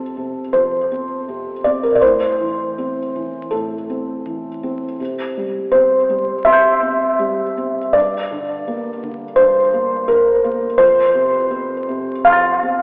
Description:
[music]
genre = neoclassical minimalist piano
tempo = 82 BPM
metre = 4/4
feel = uneven beats, rubato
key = F major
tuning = A4 = 440 Hz
[part]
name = felt-muted upright piano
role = solo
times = 0.0-12.8 s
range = F2 to A6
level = -18 LUFS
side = equal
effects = analog delay
[sound]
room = wet recital hall reverb, RT60 1.7 s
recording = heard from further back in the room, vinyl crackle, telephone sound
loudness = -17 LUFS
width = mono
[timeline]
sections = 0.0-12.8 A section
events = none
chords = 0.0 F; 2.0 Am; 5.0 C; 7.9 Gm; 10.8 F

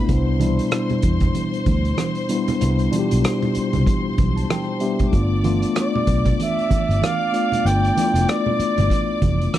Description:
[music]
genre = lush 1970s-style soul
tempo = 95 BPM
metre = 4/4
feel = swing 58% on 16ths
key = unclear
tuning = A4 = 440 Hz
[part]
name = rich studio string section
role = second line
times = 0.0-9.6 s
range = C5 to D6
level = -30 LUFS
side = left 3 dB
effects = none
[part]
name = mellow tine electric piano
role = accompaniment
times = 0.0-9.6 s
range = B2 to C6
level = -22 LUFS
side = left 2 dB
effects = medium stereo tremolo
[part]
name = vintage muted fingered electric bass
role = bass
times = 0.1-9.5 s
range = F1 to E2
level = -20 LUFS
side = equal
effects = none
[part]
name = vintage drum kit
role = drums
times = 0.1-9.6 s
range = hi-hat, kick drum, rim click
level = -23 LUFS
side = equal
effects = none
[part]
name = congas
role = percussion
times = 0.4-9.6 s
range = none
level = -27 LUFS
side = right 6 dB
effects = none
[part]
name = warm flugelhorn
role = melody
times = 5.8-9.5 s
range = D5 to G5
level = -22 LUFS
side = right 1 dB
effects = none
[sound]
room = studio reverb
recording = none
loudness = -17 LUFS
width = side -12 dB against mid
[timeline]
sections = 0.0-9.6 A section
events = tine electric piano fill 3.9-5.1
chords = 0.1 Cmaj7; 5.1 G7

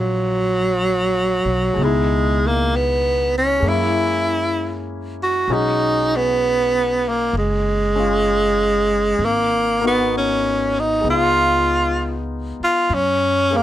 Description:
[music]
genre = jazz ballad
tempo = 65 BPM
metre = 4/4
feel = swing 68% on 8ths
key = unclear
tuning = A4 = 440 Hz
[part]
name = breathy tenor saxophone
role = melody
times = 0.0-13.6 s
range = Gb3 to Gb4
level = -17 LUFS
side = right 1 dB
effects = none
[part]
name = clear concert grand piano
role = accompaniment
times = 0.0-13.6 s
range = Cb3 to F5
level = -25 LUFS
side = left 3 dB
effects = none
[part]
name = upright bass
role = bass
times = 0.0-13.6 s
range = F#1 to Gb2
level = -25 LUFS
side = equal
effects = none
[sound]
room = little or no reverb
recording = none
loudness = -16 LUFS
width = side -12 dB against mid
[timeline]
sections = 0.0-13.6 A section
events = none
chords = 0.0 Ebm9 (rootless); 1.8 Dbm7; 3.6 Gb7; 5.5 B69; 9.2 Abm9; 11.0 Db7; 12.9 Gbadd9

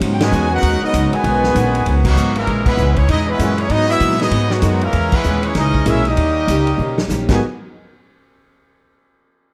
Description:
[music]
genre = jazz, big band swing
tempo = 195 BPM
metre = 4/4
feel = swing 62% on 8ths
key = G# minor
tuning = A4 = 440 Hz
[part]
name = picked steel-string acoustic guitar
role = accompaniment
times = 0.0-7.4 s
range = G#2 to G4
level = -25 LUFS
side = equal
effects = none
[part]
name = dark trombone section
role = sustained chords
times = 0.0-2.4 s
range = C#3 to F#4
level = -28 LUFS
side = equal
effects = none
[part]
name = upright bass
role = bass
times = 0.0-7.4 s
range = G#1 to A#2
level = -21 LUFS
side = equal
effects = none
[part]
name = vintage drum kit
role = drums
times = 0.0-7.3 s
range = crash cymbal, hi-hat, kick drum, ride cymbal, snare drum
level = -25 LUFS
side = equal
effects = none
[part]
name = bright trumpet section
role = melody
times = 0.1-7.4 s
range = G#3 to G#5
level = -23 LUFS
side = equal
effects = none
[part]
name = clear trombone section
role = second line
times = 0.2-7.4 s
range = G#2 to F#4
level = -23 LUFS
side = equal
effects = none
[part]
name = warm upright piano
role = accompaniment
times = 3.4-7.4 s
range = G#3 to C#5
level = -26 LUFS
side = equal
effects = none
[sound]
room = light reverb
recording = none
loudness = -16 LUFS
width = mono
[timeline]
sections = 0.0-2.5 A section; 2.5-7.4 B section; 7.4-8.6 C section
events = band accent 0.2, 2.0, 2.6, 5.1; drum fill 6.8-7.1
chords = 0.0 G#m11; 2.5 A#m7b5; 3.7 G#m7; 4.9 A#m7b5; 6.2 D#7; 7.3 G#m7; 7.4 N.C.

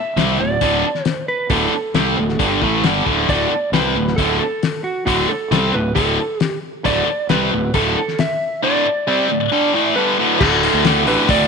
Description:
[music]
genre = classic rock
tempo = 135 BPM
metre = 4/4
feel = straight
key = unclear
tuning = A4 = 440 Hz
[part]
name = lightly driven lead guitar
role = melody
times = 0.0-11.5 s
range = F#4 to E5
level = -21 LUFS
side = right 1 dB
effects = slapback echo
[part]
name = tight distorted guitar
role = riff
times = 0.2-11.5 s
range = D2 to C4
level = -17 LUFS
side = equal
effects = distortion
[part]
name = fuzz fingered electric bass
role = bass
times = 0.2-11.5 s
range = D1 to D2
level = -23 LUFS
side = right 2 dB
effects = overdrive
[part]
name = cloth-damped thuddy drum kit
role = drums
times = 0.2-11.4 s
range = crash cymbal, hi-hat, kick drum, snare drum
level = -21 LUFS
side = left 5 dB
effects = none
[sound]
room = light reverb, small room ambience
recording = 1960s-style stereo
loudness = -15 LUFS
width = side -5 dB against mid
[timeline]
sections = 0.0-10.4 A section; 10.4-11.5 B section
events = none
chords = 0.0 D5

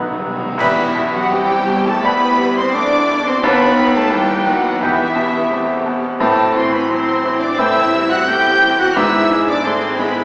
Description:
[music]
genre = classical, romantic movement for piano and orchestra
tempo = 87 BPM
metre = 4/4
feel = rubato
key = E minor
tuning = A4 = 440 Hz
[part]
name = bright concert grand piano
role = melody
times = 0.0-10.2 s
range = D#2 to D#4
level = -18 LUFS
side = equal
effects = none
[part]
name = rich symphonic violin section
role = melody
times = 0.0-10.2 s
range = E5 to G6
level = -22 LUFS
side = equal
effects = none
[part]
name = clear clarinet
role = second line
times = 0.0-9.2 s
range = F#4 to C5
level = -26 LUFS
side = equal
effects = none
[part]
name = concert flute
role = second line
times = 0.0-10.2 s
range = E5 to G6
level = -20 LUFS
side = equal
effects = none
[part]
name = warm oboe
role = second line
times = 0.0-9.2 s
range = B4 to B5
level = -23 LUFS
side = equal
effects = none
[part]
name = warm symphonic violin section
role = second line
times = 0.0-10.2 s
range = E4 to G5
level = -23 LUFS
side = equal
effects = none
[part]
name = mellow bassoon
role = accompaniment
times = 0.0-9.2 s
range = E3 to B3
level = -26 LUFS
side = equal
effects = none
[part]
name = rich symphonic viola section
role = accompaniment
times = 0.0-10.2 s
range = D#3 to B4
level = -23 LUFS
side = equal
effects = none
[part]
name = mellow French horn section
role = sustained chords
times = 0.0-10.2 s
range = E3 to G4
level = -24 LUFS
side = equal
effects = none
[part]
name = rich symphonic cello section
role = bass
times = 0.0-10.2 s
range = E3 to G4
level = -23 LUFS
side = equal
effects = none
[part]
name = warm studio double bass section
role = bass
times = 0.0-10.2 s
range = G#1 to E2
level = -31 LUFS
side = equal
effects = none
[part]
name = timpani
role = percussion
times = 0.0-5.8 s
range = E2 to B2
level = -31 LUFS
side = equal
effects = none
[part]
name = clash cymbals and concert bass drum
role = percussion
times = 0.6-2.0 s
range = none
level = -36 LUFS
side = equal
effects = none
[sound]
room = wet scoring stage reverb, RT60 1.6 s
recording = recorded in a church or concert hall, small speaker sound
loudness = -12 LUFS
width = side -27 dB against mid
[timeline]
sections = 0.6-10.2 A section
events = timpani fill 0.0-0.6; band accent 0.6-1.3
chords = 0.0 B; 0.6 Em; 3.4 B7/D#; 4.8 Em; 6.2 Am7; 9.0 E7/G#

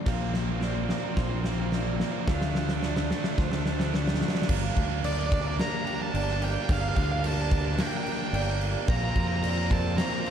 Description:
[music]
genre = post-rock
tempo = 109 BPM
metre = 4/4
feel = straight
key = G minor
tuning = A4 = 439 Hz
[part]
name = clear studio string section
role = sustained chords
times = 0.0-10.3 s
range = C4 to F5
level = -42 LUFS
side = equal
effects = none
[part]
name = clean electric guitar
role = arpeggios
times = 0.0-10.3 s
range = G2 to G4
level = -37 LUFS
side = left 2 dB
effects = slapback echo
[part]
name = vibraphone with hard mallets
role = arpeggios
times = 0.0-10.3 s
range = Bb4 to F5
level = -37 LUFS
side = right 10 dB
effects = slapback echo
[part]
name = sludgy distorted guitar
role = riff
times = 0.0-4.5 s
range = Bb2 to F3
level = -36 LUFS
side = left 12 dB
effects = overdrive
[part]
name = biting overdriven guitar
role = riff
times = 0.1-10.3 s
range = A3 to D4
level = -35 LUFS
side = right 14 dB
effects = none
[part]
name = fuzz fingered electric bass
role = bass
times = 0.1-10.0 s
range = G1 to F2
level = -30 LUFS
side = equal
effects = overdrive
[part]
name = huge arena drum kit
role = drums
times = 0.1-10.3 s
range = crash cymbal, kick drum, snare drum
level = -29 LUFS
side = equal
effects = none
[part]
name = octave-fuzz lead guitar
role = melody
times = 5.0-10.3 s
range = D5 to Bb5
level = -33 LUFS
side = left 1 dB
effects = distortion, slapback echo
[sound]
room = light reverb, studio reverb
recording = dark, warm production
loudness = -25 LUFS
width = side -8 dB against mid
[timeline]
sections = 0.0-4.5 A section; 4.5-10.3 B section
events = build-up 0.0-4.5; drum fill 0.0-4.5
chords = 0.1 Bbsus2; 2.3 Dm; 4.5 Gm7; 8.9 Bbsus2

